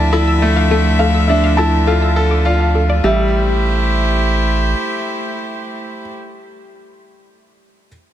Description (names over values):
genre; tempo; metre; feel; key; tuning
piano and strings electronica; 103 BPM; 4/4; straight; A minor; A4 = 439 Hz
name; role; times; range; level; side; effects
felt-muted upright piano; melody; 0.0-6.0 s; E5 to A5; -22 LUFS; right 1 dB; digital delay
rich string quartet; sustained chords; 0.0-6.1 s; D3 to E5; -20 LUFS; equal; none
bright grand piano; riff; 0.0-7.9 s; G3 to D5; -20 LUFS; left 2 dB; digital delay
round analog bass; bass; 0.0-4.7 s; A1 to D2; -16 LUFS; equal; none
warbly dusty pluck; arpeggios; 0.1-3.3 s; G4 to E6; -24 LUFS; left 3 dB; chorus, digital delay
room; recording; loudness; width
light reverb, studio ambience; none; -13 LUFS; side -11 dB against mid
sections
0.0-3.0 A section; 3.0-5.4 B section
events
drop 0.0-3.0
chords
0.0 Dmadd9; 3.0 Am7